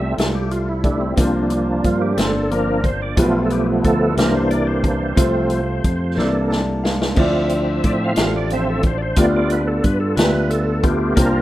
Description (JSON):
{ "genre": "slow gospel", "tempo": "60 BPM (dotted quarters)", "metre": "6/8", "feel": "straight", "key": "unclear", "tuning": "A4 = 440 Hz", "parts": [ { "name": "clear baby grand piano", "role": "accompaniment", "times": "0.0-11.4 s", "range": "B2 to A5", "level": "-23 LUFS", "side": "left 1 dB", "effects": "none" }, { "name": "bright tonewheel organ", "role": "sustained chords", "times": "0.0-11.4 s", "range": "E3 to F5", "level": "-20 LUFS", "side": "right 1 dB", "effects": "fast rotary speaker, chorus vibrato" }, { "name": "dark French horn section", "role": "sustained chords", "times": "0.0-11.4 s", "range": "E3 to E5", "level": "-28 LUFS", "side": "right 1 dB", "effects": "none" }, { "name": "fingered electric bass", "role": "bass", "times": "0.0-11.4 s", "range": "G1 to A2", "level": "-23 LUFS", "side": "equal", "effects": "none" }, { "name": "swinging big-band drum kit", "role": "drums", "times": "0.2-11.3 s", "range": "crash cymbal, hi-hat, kick drum, snare drum", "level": "-20 LUFS", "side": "equal", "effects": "none" } ], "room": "light reverb, studio reverb", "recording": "rough home demo mix", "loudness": "-16 LUFS", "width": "side -15 dB against mid", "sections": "0.0-11.4 A section", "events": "tonewheel organ solo 0.0-11.4; drum fill 6.2-7.2; grand piano fill 6.2-7.2", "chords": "0.0 Fmaj9; 1.2 C9sus4; 3.2 G9/B; 4.2 C7; 5.2 F/C; 6.2 C13; 7.2 Dm9; 9.2 G7/D" }